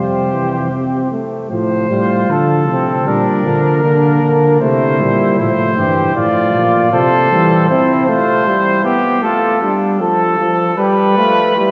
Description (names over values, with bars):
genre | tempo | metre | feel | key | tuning
classical, imitative canzona for brass ensemble | 78 BPM | 4/4 | straight | F major | A4 = 441 Hz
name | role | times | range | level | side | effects
warm trumpet | melody | 0.0-11.7 s | G4 to D5 | -19 LUFS | equal | none
mellow flugelhorn | second line | 0.0-11.7 s | C4 to A4 | -21 LUFS | equal | none
warm trombone | accompaniment | 0.0-11.7 s | E3 to C4 | -19 LUFS | equal | none
mellow bass trombone | bass | 0.0-7.7 s | G2 to E3 | -20 LUFS | equal | none
room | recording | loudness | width
wet cathedral reverb, RT60 4.2 s | heard from further back in the room, nothing above 7.7 kHz | -14 LUFS | mono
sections
0.0-1.5 A section; 1.5-11.7 B section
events
none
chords
0.0 C; 1.5 F/A; 3.1 Bb; 4.6 C; 6.2 F/A; 7.7 C; 9.2 F; 10.8 G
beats
0.72 | 1.51 2.29 3.07 3.84 | 4.62 5.39 6.16 6.93 | 7.70 8.47 9.24 10.01 | 10.79 11.57